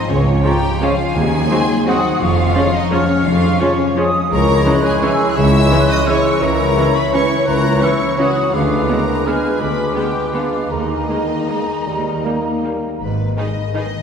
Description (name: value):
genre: classical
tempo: 146-184 BPM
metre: 3/4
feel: rubato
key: G# minor from 4.3 s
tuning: A4 = 441 Hz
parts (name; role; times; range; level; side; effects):
- rich symphonic violin section; melody; 0.0-14.0 s; B4 to F#6; -25 LUFS; left 2 dB; none
- bright small flute group; second line; 0.0-12.8 s; Ab5 to F#6; -25 LUFS; equal; none
- warm symphonic violin section; second line; 0.0-13.8 s; Db4 to E5; -24 LUFS; left 3 dB; none
- concert harp; arpeggios; 0.0-14.0 s; Ab2 to B5; -22 LUFS; left 4 dB; none
- clear symphonic cello section; bass; 0.1-13.3 s; Db2 to G#2; -23 LUFS; right 2 dB; none
- clear symphonic double bass section; bass; 0.1-13.3 s; F1 to Eb2; -23 LUFS; right 2 dB; none
- clear clarinet; second line; 0.4-12.8 s; D4 to Gb4; -26 LUFS; equal; none
- clear symphonic viola section; accompaniment; 0.4-13.8 s; D#3 to D#4; -25 LUFS; right 2 dB; none
- mellow bassoon; accompaniment; 0.4-13.0 s; D#3 to A#3; -24 LUFS; equal; none
- dark cor anglais; second line; 0.5-12.8 s; A#4 to Db5; -23 LUFS; right 1 dB; none
- warm French horn section; sustained chords; 0.5-12.8 s; E3 to Db4; -26 LUFS; left 2 dB; none
- timpani; percussion; 1.2-1.7 s; Eb3; -29 LUFS; left 1 dB; none
room: wet cathedral reverb, RT60 4.0 s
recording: recorded in a church or concert hall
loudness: -14 LUFS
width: side -7 dB against mid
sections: 0.0-13.0 A section; 13.0-14.0 B section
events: none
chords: 0.1 Db; 1.2 Ab7/Eb; 2.2 Db/F; 4.3 C#m; 6.4 A#dim/C#; 8.5 Ddim7; 10.7 D#sus4; 11.9 D#; 13.0 G#m